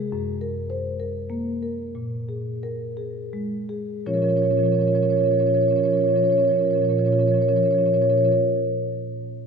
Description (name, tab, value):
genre	classical, contemporary piece for solo marimba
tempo	53-72 BPM (dotted quarters)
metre	6/8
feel	rubato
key	Bb minor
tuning	A4 = 441 Hz
part	marimba with soft mallets	solo	0.0-8.4 s	Gb2 to Db5	-20 LUFS	right 1 dB	none
room	wet church reverb, RT60 3.0 s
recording	none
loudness	-20 LUFS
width	side -5 dB against mid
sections	0.0-4.1 A section; 4.1-8.5 B section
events	slowing down 0.0-4.1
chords	0.1 Gb; 1.9 Absus2/Bb; 4.1 Bbm